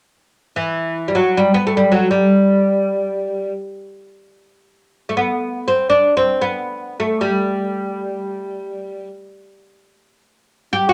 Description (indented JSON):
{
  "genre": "arabic",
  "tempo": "free time",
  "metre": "none",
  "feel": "none",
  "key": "G maqam ajam",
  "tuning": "A4 = 440 Hz",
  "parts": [
    { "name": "oud", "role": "melody", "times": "0.6-10.9 s", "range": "E3 to G4", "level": "-18 LUFS", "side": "equal", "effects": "none" }
  ],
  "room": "moderate studio reverb, RT60 0.7 s",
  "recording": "none",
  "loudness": "-18 LUFS",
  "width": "mono",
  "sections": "0.0-10.9 A section",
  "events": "none",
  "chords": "none"
}